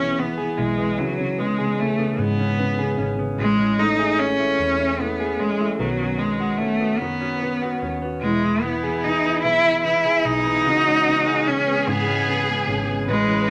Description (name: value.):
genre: pop.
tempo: 50 BPM (dotted quarters).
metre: 6/8.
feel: straight.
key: C# minor.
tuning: A4 = 440 Hz.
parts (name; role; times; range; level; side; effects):
clear cello; melody; 0.0-13.5 s; F#3 to E4; -23 LUFS; equal; none.
warm upright piano; accompaniment; 0.0-13.5 s; C#3 to F#4; -31 LUFS; equal; none.
direct-recorded clean electric guitar; arpeggios; 0.0-13.5 s; D#3 to G#4; -30 LUFS; equal; none.
vintage muted fingered electric bass; bass; 0.0-13.5 s; E1 to G#2; -32 LUFS; equal; none.
warm studio violin section; second line; 8.2-13.5 s; E4 to B4; -30 LUFS; equal; none.
room: wet studio ambience, RT60 0.5 s.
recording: none.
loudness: -21 LUFS.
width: mono.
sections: 0.0-13.5 A section.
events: none.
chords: 0.0 E; 1.0 C#m7; 3.4 Amaj7; 5.8 Badd9; 8.2 E; 10.7 C#m7.